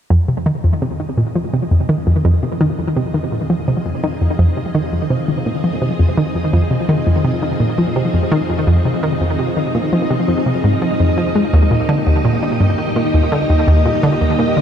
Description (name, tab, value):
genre	ambient, sequencer-driven space music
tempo	84 BPM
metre	4/4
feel	straight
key	F minor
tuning	A4 = 440 Hz
part	string machine, full ensemble	sustained chords	0.1-14.6 s	Bb3 to Eb5	-22 LUFS	equal	ensemble chorus
part	analog pluck	riff	0.1-14.6 s	Eb2 to Ab3	-14 LUFS	equal	chorus, tape echo
part	wind-like tuned noise texture	texture	1.0-14.6 s	Eb5	-27 LUFS	right 1 dB	built-in reverb
room	wet huge ambient reverb, RT60 8.8 s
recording	dark, warm production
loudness	-14 LUFS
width	side -9 dB against mid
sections	0.1-14.6 A section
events	fade-in on string machine 0.1-14.6; fade-in on synth texture 0.1-14.6; filter sweep on synth arpeggio sound 0.1-14.6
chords	0.1 Fm7; 11.5 Ebmaj7